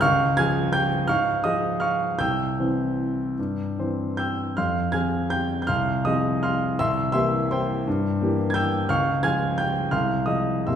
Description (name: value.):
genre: classical, piano waltz.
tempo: 143-181 BPM.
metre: 3/4.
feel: rubato.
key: F minor.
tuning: A4 = 440 Hz.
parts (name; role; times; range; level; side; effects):
clear grand piano; solo; 0.0-10.8 s; C2 to Ab6; -21 LUFS; equal; none.
room: wet recital hall reverb, RT60 1.5 s.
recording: heard from further back in the room.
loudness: -21 LUFS.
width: side -8 dB against mid.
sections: 0.0-10.8 A section.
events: none.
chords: 0.0 Db; 2.2 C; 4.6 Fm; 6.8 C7; 8.9 Db; 9.9 Fm/C.